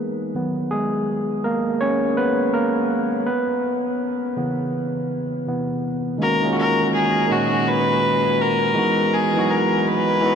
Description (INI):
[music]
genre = R&B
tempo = 82 BPM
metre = 4/4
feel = swing 64% on 16ths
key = B major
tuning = A4 = 440 Hz
[part]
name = overdriven tine electric piano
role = accompaniment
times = 0.0-10.3 s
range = A#2 to C#5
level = -20 LUFS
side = right 1 dB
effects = none
[part]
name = warm fiddle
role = melody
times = 6.2-10.3 s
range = F#4 to B4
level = -19 LUFS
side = left 2 dB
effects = none
[sound]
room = wet huge ambient reverb, RT60 7.5 s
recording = dreamy mix soaked in reverb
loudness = -18 LUFS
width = side -7 dB against mid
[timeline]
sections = 0.0-6.2 A section; 6.2-10.3 A section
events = tine electric piano solo 0.0-6.2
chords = 0.3 G#m11/D#; 3.3 C#m7; 5.5 Cmaj7; 6.2 Bmaj13; 8.7 Emaj7